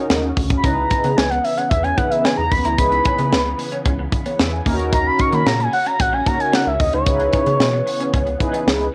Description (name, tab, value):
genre	early-eighties boogie funk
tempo	112 BPM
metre	4/4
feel	straight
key	C# dorian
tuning	A4 = 440 Hz
part	mellow synth brass	accompaniment	0.0-8.9 s	C#4 to G#5	-26 LUFS	equal	chorus, cassette tape
part	soft string machine	sustained chords	0.0-8.9 s	C#3 to F#4	-30 LUFS	equal	phaser, ensemble chorus, cassette tape
part	rubbery square bass	bass	0.1-8.9 s	A#1 to D#3	-26 LUFS	equal	none
part	tight funk drum kit	drums	0.1-8.9 s	hi-hat, kick drum, snare drum	-22 LUFS	equal	none
part	expressive synth lead	melody	0.6-8.9 s	C#5 to C#6	-22 LUFS	equal	chorus, cassette tape
part	electric guitar at the edge of break-up	riff	0.6-8.6 s	A#3 to E4	-31 LUFS	equal	ensemble chorus, cassette tape
room	light reverb, small room ambience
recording	home recording on cassette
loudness	-18 LUFS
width	mono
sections	0.0-8.9 A section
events	none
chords	0.0 D#m7; 0.6 C#m9; 4.7 D#m7; 7.1 C#m9